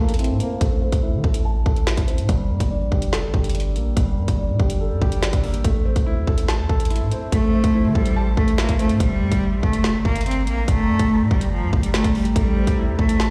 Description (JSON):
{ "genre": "hip hop, drill", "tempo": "143 BPM", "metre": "4/4", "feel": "half-time", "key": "A phrygian", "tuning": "A4 = 440 Hz", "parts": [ { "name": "bright cello", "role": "melody", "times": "0.0-0.6, 7.3-13.3 s", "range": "F3 to C4", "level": "-24 LUFS", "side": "equal", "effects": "low-pass filter, tape echo" }, { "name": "warm concert grand piano", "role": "accompaniment", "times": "0.0-9.0, 12.4-13.3 s", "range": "G3 to A5", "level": "-30 LUFS", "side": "equal", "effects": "low-pass filter" }, { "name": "long sustained 808-style bass", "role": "bass", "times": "0.0-13.3 s", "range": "F1 to E3", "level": "-24 LUFS", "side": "equal", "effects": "none" }, { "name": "drill drum kit", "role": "drums", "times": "0.1-13.3 s", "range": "hi-hat, kick drum, snare drum", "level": "-23 LUFS", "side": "equal", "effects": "vintage 12-bit sampler grit" }, { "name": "granular cloud pad", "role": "sustained chords", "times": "6.5-13.3 s", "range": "A3 to C6", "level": "-33 LUFS", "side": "equal", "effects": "built-in reverb" } ], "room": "light reverb, digital ambience", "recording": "played on a big sound system in a bare room, stone room reverb", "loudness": "-20 LUFS", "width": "mono", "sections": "0.0-13.3 A section", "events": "filter sweep 0.0-5.6", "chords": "0.0 Am; 2.3 Gmadd9; 5.6 Am; 9.0 Gmadd9; 12.4 Am" }